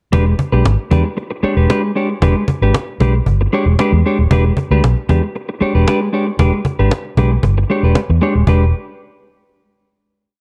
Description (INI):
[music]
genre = funk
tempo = 115 BPM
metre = 4/4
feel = straight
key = E mixolydian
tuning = A4 = 437 Hz
[part]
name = clean electric guitar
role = accompaniment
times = 0.1-8.6 s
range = G#3 to C#5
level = -19 LUFS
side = equal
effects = spring reverb
[part]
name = vintage muted fingered electric bass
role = bass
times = 0.1-8.7 s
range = D#1 to E2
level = -15 LUFS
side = equal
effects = none
[part]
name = cajon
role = drums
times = 0.1-8.6 s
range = none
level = -20 LUFS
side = equal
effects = none
[sound]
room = light reverb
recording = cassette tape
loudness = -15 LUFS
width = mono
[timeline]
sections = 0.1-8.5 groove; 8.5-10.4 final chord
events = none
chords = 0.1 E7#9